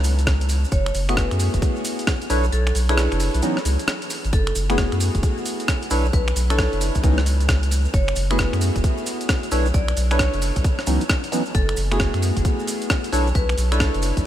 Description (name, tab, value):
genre	UK garage, two-step garage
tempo	133 BPM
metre	4/4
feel	swing 63% on 16ths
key	F# minor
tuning	A4 = 438 Hz
part	saturated sub bass	bass	0.0-14.2 s	F#1 to F#2	-21 LUFS	equal	none
part	breakbeat sampler-style drum kit	drums	0.0-14.2 s	finger snaps, hi-hat, rim click	-27 LUFS	equal	none
part	maracas	percussion	0.0-14.2 s	none	-34 LUFS	right 4 dB	none
part	electronic kick drum	drums	0.3-14.2 s	none	-22 LUFS	equal	none
part	vibraphone with hard mallets	melody	0.7-13.9 s	G#4 to D5	-31 LUFS	right 1 dB	diffuse ambient delay
part	percussive organ stab	stabs	1.1-14.2 s	E3 to C#5	-25 LUFS	equal	wide subtle chorus, ping-pong delay
room	light reverb, digital ambience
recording	none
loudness	-18 LUFS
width	side -12 dB against mid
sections	0.0-14.3 A section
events	kick drops out 2.5-4.3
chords	0.0 N.C.; 0.7 F#m11; 2.3 Bm11; 3.4 C#m11; 4.3 F#m11; 5.9 Bm11; 7.0 C#m11; 7.9 F#m11; 9.5 Bm11; 10.6 C#m11; 11.5 F#m11; 13.1 Bm11